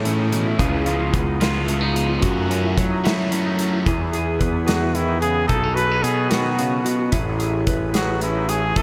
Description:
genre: math rock and midwest emo.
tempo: 73 BPM (dotted quarters).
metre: 6/8.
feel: straight.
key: A lydian.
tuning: A4 = 440 Hz.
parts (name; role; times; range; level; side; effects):
twangy electric guitar; accompaniment; 0.0-8.8 s; F#2 to G#4; -30 LUFS; equal; slapback echo.
concert harp; arpeggios; 0.0-8.8 s; C#4 to B4; -29 LUFS; equal; slapback echo.
crunchy overdriven guitar; riff; 0.0-3.9 s; C#3 to F#4; -29 LUFS; equal; phaser.
fuzz picked electric bass; bass; 0.0-8.8 s; A1 to F#3; -25 LUFS; equal; overdrive.
loose indie drum kit; drums; 0.1-8.8 s; hi-hat, kick drum, snare drum; -26 LUFS; equal; none.
clear trumpet; melody; 4.7-8.8 s; E4 to B4; -26 LUFS; equal; slapback echo.
room: moderate lush hall reverb, RT60 2.7 s.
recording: big arena sound.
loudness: -20 LUFS.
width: mono.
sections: 0.0-3.9 A section; 3.9-8.8 B section.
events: none.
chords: 0.0 Amaj7; 0.6 C#7; 2.2 F#m7; 3.9 Emaj7; 5.5 B7; 7.1 Amaj7.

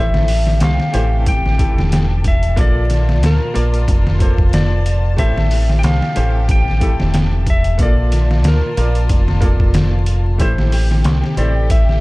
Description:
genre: trip hop.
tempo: 92 BPM.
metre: 4/4.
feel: swing 55% on 16ths.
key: A phrygian.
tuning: A4 = 444 Hz.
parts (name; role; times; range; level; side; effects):
clean lap steel guitar; melody; 0.0-12.0 s; Bb4 to G5; -24 LUFS; left 1 dB; vintage 12-bit sampler grit, tape echo.
bright upright piano; accompaniment; 0.0-12.0 s; E3 to D5; -26 LUFS; equal; tremolo, vintage 12-bit sampler grit, tape echo.
dark chamber string section; sustained chords; 0.0-12.0 s; Bb2 to A5; -28 LUFS; left 1 dB; vintage 12-bit sampler grit.
deep dub fingered electric bass; bass; 0.0-12.0 s; E1 to D2; -15 LUFS; equal; none.
trip hop sampler-style drum kit; drums; 0.1-12.0 s; hi-hat, kick drum, snare drum; -17 LUFS; equal; overdrive.
room: digital ambience.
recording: dark, warm production, vinyl crackle.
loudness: -12 LUFS.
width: side -21 dB against mid.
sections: 0.0-12.0 A section.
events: none.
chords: 0.0 Am7; 2.6 Bbmaj9; 5.2 Am7; 7.8 Bbmaj7; 10.4 Am7.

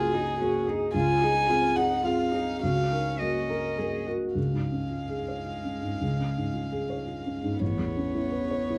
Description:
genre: neoclassical piano and strings.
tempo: 100-114 BPM.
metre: 3/4.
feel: rubato.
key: Db major.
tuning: A4 = 440 Hz.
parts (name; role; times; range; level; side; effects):
dark violin; melody; 0.0-8.8 s; Ab4 to Ab5; -33 LUFS; equal; none.
warm cello; second line; 0.0-8.8 s; Ab3 to F4; -38 LUFS; equal; none.
dark viola; accompaniment; 0.0-4.4 s; Eb4 to Bb4; -35 LUFS; equal; none.
felt-muted upright piano; accompaniment; 0.0-8.8 s; A1 to Db5; -31 LUFS; equal; none.
room: wet studio ambience, RT60 0.5 s.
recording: band playing live in one room.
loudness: -28 LUFS.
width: mono.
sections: 0.0-4.4 A section; 4.4-8.8 B section.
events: none.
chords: 0.0 Gbadd9/Db; 0.9 Fm/Db; 2.6 Ebm7/Db; 4.4 Db; 7.6 Aadd9.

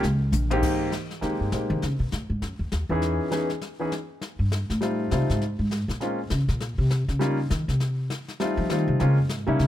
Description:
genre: jazz piano trio.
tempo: 201 BPM.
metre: 4/4.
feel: swing 61% on 8ths.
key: Ab major.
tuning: A4 = 440 Hz.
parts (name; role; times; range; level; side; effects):
clear grand piano; melody; 0.0-9.7 s; Ab2 to Ab4; -26 LUFS; left 1 dB; plate reverb.
upright bass; bass; 0.0-9.7 s; Bb1 to F3; -24 LUFS; equal; none.
jazz brush drum kit; drums; 0.0-9.7 s; brushed snare drum, crash cymbal, hi-hat, kick drum, snare drum, toms; -34 LUFS; left 3 dB; none.
room: light reverb.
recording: none.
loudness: -23 LUFS.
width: side -12 dB against mid.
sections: 0.6-9.7 A section.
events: drum fill 0.3; upright bass solo 0.6-9.7.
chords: 0.0 Eb7(no3) (rootless); 0.6 Abmaj9; 1.8 Abmadd11; 2.4 N.C.; 3.0 Dbm9; 4.2 F7; 5.4 Bbm7; 6.6 Eb7(no3); 7.8 N.C.; 8.4 F7; 9.0 Bbm7.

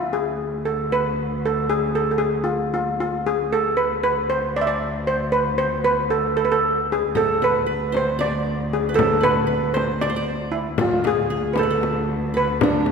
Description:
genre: Turkish makam ensemble.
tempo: 230 BPM (eighths).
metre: 7/8.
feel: straight.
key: D makam nikriz.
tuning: A4 = 440 Hz.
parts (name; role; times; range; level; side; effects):
steel pan; melody; 0.0-12.9 s; D4 to E5; -20 LUFS; right 1 dB; none.
rich cello; drone; 0.0-12.9 s; D2; -27 LUFS; equal; none.
qanun; second line; 7.2-12.9 s; D4 to D5; -26 LUFS; equal; none.
frame drum; percussion; 7.2-12.9 s; none; -26 LUFS; left 4 dB; none.
room: wet concert hall reverb, RT60 2.2 s.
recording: recorded in a church or concert hall.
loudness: -19 LUFS.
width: side -5 dB against mid.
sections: 0.0-12.9 A section.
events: none.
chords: none.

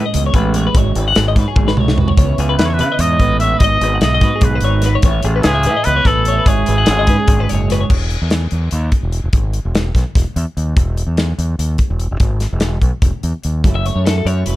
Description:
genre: math rock and midwest emo.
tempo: 294 BPM (eighths).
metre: 7/8.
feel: straight.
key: E major.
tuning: A4 = 440 Hz.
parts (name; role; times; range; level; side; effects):
twelve-string electric guitar; accompaniment; 0.0-7.9, 13.7-14.6 s; E2 to G#4; -21 LUFS; right 7 dB; none.
twelve-string electric guitar; arpeggios; 0.0-7.9, 13.8-14.6 s; G#4 to F#5; -21 LUFS; left 8 dB; tremolo.
growling fingered electric bass; bass; 0.0-14.6 s; E1 to C#3; -17 LUFS; equal; overdrive.
modern studio drum kit; drums; 0.1-14.6 s; crash cymbal, hi-hat, kick drum, snare drum, toms; -16 LUFS; equal; none.
clear trumpet; melody; 2.6-7.7 s; G#4 to E5; -18 LUFS; equal; none.
room: little or no reverb.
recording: dark, warm production.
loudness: -12 LUFS.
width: side -16 dB against mid.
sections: 0.0-7.9 A section; 7.9-14.6 B section.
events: drum fill 1.6-2.2.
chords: 0.0 Amaj7; 0.8 E69/G#; 2.2 C#m7; 3.6 G#m7; 5.0 Amaj7; 6.5 E69/G#; 7.9 N.C.; 13.6 F#m7.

